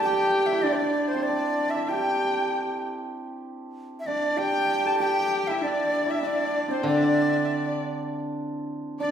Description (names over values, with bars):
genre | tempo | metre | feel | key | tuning
chinese traditional, Chinese chamber ensemble | 97 BPM | 4/4 | straight | D shang mode | A4 = 441 Hz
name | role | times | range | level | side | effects
breathy bright large dizi | melody | 0.0-9.1 s | C5 to G5 | -28 LUFS | equal | none
clear erhu | second line | 0.0-9.1 s | C5 to A5 | -31 LUFS | left 3 dB | none
hammered dulcimer | second line | 0.0-9.1 s | C4 to A4 | -28 LUFS | right 2 dB | none
warm horsehead fiddle | second line | 0.0-9.1 s | C4 to G4 | -30 LUFS | equal | none
steel-string zither | accompaniment | 6.8-8.7 s | D3 | -29 LUFS | equal | none
room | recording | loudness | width
wet scoring stage reverb, RT60 1.5 s | heard from further back in the room | -23 LUFS | side -8 dB against mid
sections
0.0-9.1 A section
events
none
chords
none